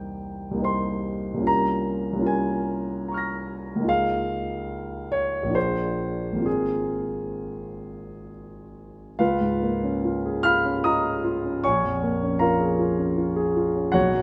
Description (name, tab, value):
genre	classical, impressionist solo piano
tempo	64-79 BPM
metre	3/4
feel	rubato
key	Ab major, Db mixolydian from 9.2 s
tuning	A4 = 441 Hz
part	warm concert grand piano	solo	0.0-14.2 s	Ab1 to Bb6	-25 LUFS	equal	none
room	moderate concert hall reverb, RT60 2.2 s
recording	none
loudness	-25 LUFS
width	mono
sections	0.0-9.2 A section; 9.2-14.2 B section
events	none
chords	0.0 Cm7; 1.5 Bbm9/C; 3.9 Db69; 5.6 Bb9; 6.5 Ab69; 9.2 Db6; 11.6 Bbm7